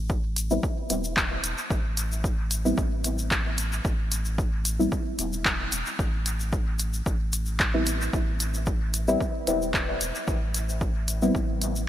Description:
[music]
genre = dub techno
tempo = 112 BPM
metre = 4/4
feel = straight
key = A minor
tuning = A4 = 435 Hz
[part]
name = warm sub bass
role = bass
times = 0.0-11.9 s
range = E1 to A1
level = -30 LUFS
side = equal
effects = sidechain pumping
[part]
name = electronic kick drum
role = drums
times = 0.1-11.5 s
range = none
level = -28 LUFS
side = equal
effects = none
[part]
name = egg shaker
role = percussion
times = 0.1-11.9 s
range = none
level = -34 LUFS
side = left 3 dB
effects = none
[part]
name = deep house drum kit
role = drums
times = 0.4-11.7 s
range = handclaps, hi-hat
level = -29 LUFS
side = equal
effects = dub echo
[part]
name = deep mellow chord stab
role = stabs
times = 0.5-11.3 s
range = G3 to E4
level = -28 LUFS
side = left 1 dB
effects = chorus, phaser, vintage 12-bit sampler grit, sidechain pumping, dub echo
[sound]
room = light reverb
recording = none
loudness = -24 LUFS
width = side -12 dB against mid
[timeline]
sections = 0.0-11.9 A section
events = filter sweep on synth stab 0.0-11.9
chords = 0.0 Am7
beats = 0.10 0.63 1.17 | 1.71 2.24 2.78 3.31 | 3.85 4.38 4.92 5.46 | 5.99 6.53 7.06 7.60 | 8.13 8.67 9.21 9.74 | 10.28 10.81 11.35 11.88

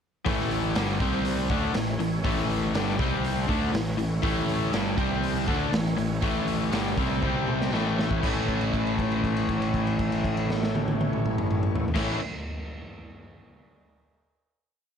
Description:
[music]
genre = classic rock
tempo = 120 BPM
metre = 4/4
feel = straight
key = A mixolydian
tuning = A4 = 440 Hz
[part]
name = overdriven electric guitar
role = riff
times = 0.2-12.2 s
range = G2 to D4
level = -29 LUFS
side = left 12 dB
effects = none
[part]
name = overdriven tonewheel organ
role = sustained chords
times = 0.3-12.2 s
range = A3 to C#5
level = -38 LUFS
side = equal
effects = chorus vibrato, slow rotary speaker
[part]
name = overdriven semi-hollow guitar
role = riff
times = 0.3-12.2 s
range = G2 to E4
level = -30 LUFS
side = right 12 dB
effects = none
[part]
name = fuzz picked electric bass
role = bass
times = 0.3-12.2 s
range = G1 to D2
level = -31 LUFS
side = right 1 dB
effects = overdrive
[part]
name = raw garage drum kit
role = drums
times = 0.3-12.1 s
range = crash cymbal, hi-hat, kick drum, snare drum, toms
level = -29 LUFS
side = equal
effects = none
[sound]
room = studio reverb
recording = none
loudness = -24 LUFS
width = side -7 dB against mid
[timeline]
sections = 0.3-8.2 riff; 8.2-12.3 final chord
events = drum fill 7.2-8.2; held note 8.2-12.0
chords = 0.3 A; 1.0 C5; 1.5 A; 3.0 C5; 3.5 A; 5.0 C5; 5.5 A; 7.2 C5; 7.7 A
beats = | 0.26 0.76 1.25 1.75 | 2.24 2.74 3.23 3.73 | 4.23 4.73 5.22 5.72 | 6.22 6.73 7.23 7.73 | 8.23 8.74 9.24 9.74 | 10.25 10.75 11.25 11.76

